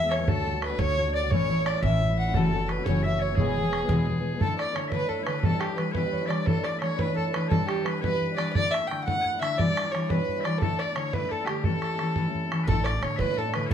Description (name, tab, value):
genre	celtic folk, Celtic jig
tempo	116 BPM (dotted quarters)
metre	6/8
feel	straight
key	E mixolydian, A mixolydian from 4.4 s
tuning	A4 = 441 Hz
part	dark fiddle	melody	0.0-13.7 s	G4 to G5	-30 LUFS	equal	none
part	Celtic harp	second line	0.0-13.7 s	G4 to G#5	-35 LUFS	right 7 dB	none
part	loud bright bagpipes	second line	0.0-13.7 s	G4 to G#5	-35 LUFS	left 4 dB	none
part	fingerpicked steel-string acoustic guitar	accompaniment	0.0-13.7 s	E2 to G#4	-29 LUFS	left 2 dB	none
part	upright bass	bass	0.0-4.3, 12.7-13.7 s	E1 to A2	-30 LUFS	right 1 dB	none
part	bodhran	percussion	0.1-13.7 s	none	-30 LUFS	right 2 dB	none
room	moderate studio reverb, RT60 0.5 s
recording	none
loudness	-24 LUFS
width	side -9 dB against mid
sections	0.0-4.4 A section; 4.4-12.7 B section; 12.7-13.7 B section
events	none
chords	0.3 D; 1.3 A; 2.3 F#m7; 3.4 E; 4.4 Asus4; 5.4 Em7; 6.5 Asus4; 7.5 Em7; 8.5 Asus4; 9.6 Em7; 10.6 Asus4; 11.6 A; 12.7 Asus4